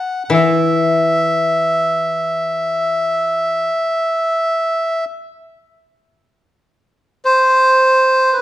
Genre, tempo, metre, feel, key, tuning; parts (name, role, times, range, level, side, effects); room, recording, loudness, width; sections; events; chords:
japanese traditional, Japanese chamber music; free time; A4 = 439 Hz
melodica; melody; 0.0-8.4 s; B4 to F#5; -14 LUFS; equal
koto; accompaniment; 0.3-3.7 s; E3; -18 LUFS; left 3 dB
wet recital hall reverb, RT60 1.6 s; dark, warm production; -13 LUFS; side -14 dB against mid
0.0-8.4 A section
slowing down 3.7-8.4